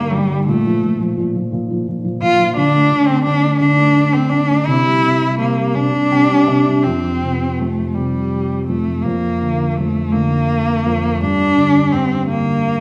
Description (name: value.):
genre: children's music, lullaby.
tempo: 56 BPM (dotted quarters).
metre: 6/8.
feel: rubato.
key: F major.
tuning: A4 = 437 Hz.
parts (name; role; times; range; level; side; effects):
warm cello; melody; 0.0-12.8 s; G3 to F4; -18 LUFS; equal; none.
felt-muted upright piano; accompaniment; 0.0-12.8 s; F2 to G5; -20 LUFS; equal; none.
room: wet recital hall reverb, RT60 1.3 s.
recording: recorded in a church or concert hall.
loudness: -16 LUFS.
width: mono.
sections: 0.0-6.9 A section; 6.9-12.8 B section.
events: felt piano fill 5.8-6.9.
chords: 0.5 Bb5; 2.6 D5; 4.7 C; 6.9 Fsus2; 9.0 Bb/F; 11.2 Gm.